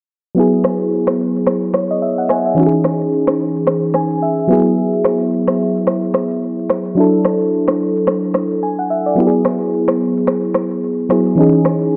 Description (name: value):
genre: afrobeats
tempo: 109 BPM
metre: 4/4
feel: swing 58% on 16ths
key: E major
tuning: A4 = 440 Hz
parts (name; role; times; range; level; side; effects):
- FM electric piano; accompaniment; 0.3-12.0 s; E3 to G#5; -16 LUFS; equal; chorus
- electronic shaker, finger snaps and rim click; drums; 0.4-12.0 s; none; -22 LUFS; equal; vintage 12-bit sampler grit
room: light reverb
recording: low-pass filter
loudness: -16 LUFS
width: mono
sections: 0.4-12.0 A section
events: FM electric piano fill 3.7-4.8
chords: 0.4 Eadd9; 2.6 C#madd9; 4.5 Eadd9; 7.0 Dadd9; 9.2 Eadd9; 11.4 C#madd9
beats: | 0.37 0.92 1.47 2.02 | 2.57 3.12 3.67 4.22 | 4.78 5.33 5.88 6.43 | 6.98 7.53 8.08 8.63 | 9.18 9.73 10.28 10.83 | 11.38 11.93